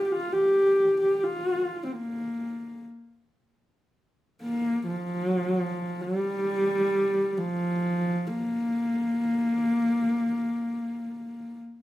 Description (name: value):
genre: mongolian traditional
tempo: free time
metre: none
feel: none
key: unclear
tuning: A4 = 440 Hz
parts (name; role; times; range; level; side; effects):
- dark horsehead fiddle; solo; 0.0-11.6 s; F3 to G4; -24 LUFS; equal; none
room: wet large studio reverb, RT60 0.9 s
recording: band playing live in one room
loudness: -24 LUFS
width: side -15 dB against mid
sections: 0.0-3.7 A section; 3.7-11.8 B section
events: none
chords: none